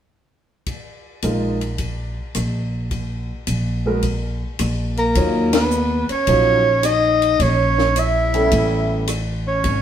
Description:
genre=jazz, small-group swing and bop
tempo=107 BPM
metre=4/4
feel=swing 68% on 8ths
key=Eb minor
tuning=A4 = 439 Hz
part: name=compact cocktail drum kit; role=drums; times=0.7-9.8 s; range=hi-hat, kick drum, ride cymbal, rim click, snare drum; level=-26 LUFS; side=left 2 dB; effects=none
part: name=warm concert grand piano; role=accompaniment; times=1.2-9.0 s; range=Gb3 to Db5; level=-22 LUFS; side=equal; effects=none
part: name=upright bass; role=bass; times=1.2-9.8 s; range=Ab1 to Eb2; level=-22 LUFS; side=equal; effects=none
part: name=warm soprano saxophone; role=melody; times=5.0-9.8 s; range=Bb4 to Fb5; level=-19 LUFS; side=equal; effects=none
part: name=growling alto saxophone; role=second line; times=5.0-9.8 s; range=Bb3 to Fb4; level=-23 LUFS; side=right 4 dB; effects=none
room=wet stone room reverb, RT60 1.1 s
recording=band playing live in one room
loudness=-17 LUFS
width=side -9 dB against mid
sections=0.7-5.2 A section; 5.2-9.8 B section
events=band accent 5.4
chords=0.7 Bb7sus4; 2.9 N.C.; 5.2 Ebm9; 7.4 Bbdim; 8.5 A9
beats=| 0.67 1.23 1.79 2.35 | 2.91 3.47 4.03 4.59 | 5.16 5.72 6.28 6.84 | 7.40 7.96 8.52 9.08 | 9.64

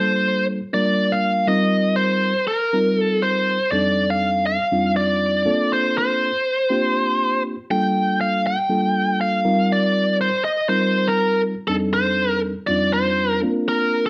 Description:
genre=jazz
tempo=121 BPM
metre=4/4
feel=swing 56% on 16ths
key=unclear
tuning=A4 = 437 Hz
part: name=biting lead guitar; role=melody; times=0.0-14.1 s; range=A4 to G5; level=-22 LUFS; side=equal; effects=overdrive
part: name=reed electric piano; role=accompaniment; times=0.0-14.1 s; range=F2 to Bb4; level=-24 LUFS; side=equal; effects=none
room=moderate large studio reverb, RT60 0.8 s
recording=dark, warm production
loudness=-20 LUFS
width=mono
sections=0.0-14.1 A section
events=none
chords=0.0 Gm9; 1.5 F9sus4; 3.7 F13; 5.5 Bbmaj9; 7.7 Gm9; 9.4 F9sus4; 11.7 F13; 13.4 Bbadd9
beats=0.24 0.74 1.24 | 1.73 2.23 2.73 3.22 | 3.72 4.22 4.72 5.21 | 5.71 6.21 6.71 7.20 | 7.70 8.20 8.70 9.19 | 9.69 10.19 10.69 11.19 | 11.68 12.18 12.68 13.18 | 13.68

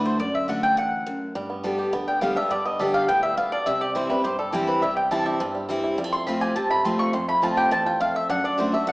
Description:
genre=bluegrass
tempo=207 BPM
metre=4/4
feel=straight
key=G mixolydian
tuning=A4 = 440 Hz
part: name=mandolin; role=melody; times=0.0-8.9 s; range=G4 to C#6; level=-23 LUFS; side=equal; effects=none
part: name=picked steel-string acoustic guitar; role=accompaniment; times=0.0-8.9 s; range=E2 to G4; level=-26 LUFS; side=equal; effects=none
part: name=upright bass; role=bass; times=0.0-8.9 s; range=G1 to D3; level=-42 LUFS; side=equal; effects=none
part: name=bluegrass banjo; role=melody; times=1.4-8.9 s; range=D3 to G4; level=-30 LUFS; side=right 1 dB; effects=none
room=wet large studio reverb, RT60 1.4 s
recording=small speaker sound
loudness=-21 LUFS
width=side -22 dB against mid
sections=0.0-8.9 A section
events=none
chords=0.0 D/F#; 1.4 G; 3.7 C; 6.0 F; 8.3 D/F#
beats=| 0.20 0.49 0.78 1.06 | 1.35 1.64 1.93 2.22 | 2.51 2.80 3.09 3.38 | 3.67 3.96 4.25 4.54 | 4.83 5.11 5.40 5.69 | 5.98 6.27 6.56 6.85 | 7.14 7.43 7.72 8.01 | 8.30 8.59 8.88

